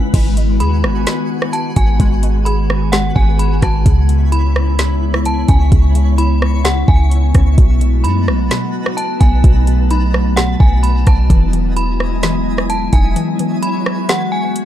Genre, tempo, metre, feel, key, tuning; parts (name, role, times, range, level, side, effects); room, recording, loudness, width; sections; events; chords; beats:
hip hop, atmospheric cloud-rap; 129 BPM; 4/4; half-time; A4 = 440 Hz
glassy FM pad; sustained chords; 0.0-14.7 s; C#3 to G#4; -20 LUFS; left 2 dB; ensemble chorus, built-in reverb, sidechain pumping
hollow square pluck; arpeggios; 0.0-14.7 s; B2 to G#4; -26 LUFS; left 4 dB; chorus, low-pass filter, ping-pong delay
twinkling granular texture; texture; 0.0-14.7 s; D#4 to C#6; -29 LUFS; equal; built-in reverb
clean 808-style bass; bass; 0.1-13.2 s; E1 to F#2; -14 LUFS; equal
smooth R&B drum kit; drums; 0.1-14.7 s; crash cymbal, hi-hat, kick drum, rim click, snare drum; -14 LUFS; equal
metallic FM bell; melody; 0.6-14.5 s; F#5 to B5; -23 LUFS; right 1 dB; chorus, low-pass filter, ping-pong delay
little or no reverb; dark, warm production; -11 LUFS; side -12 dB against mid
0.1-14.7 A section
kick muted 13.2-14.7
0.1 G#m7; 3.9 C#m7; 7.6 B7; 11.3 Emaj7
| 0.14 0.60 1.07 1.53 | 2.00 2.46 2.93 3.39 | 3.86 4.32 4.79 5.25 | 5.72 6.18 6.65 7.11 | 7.58 8.04 8.51 8.97 | 9.44 9.90 10.37 10.84 | 11.30 11.77 12.23 12.70 | 13.16 13.63 14.09 14.56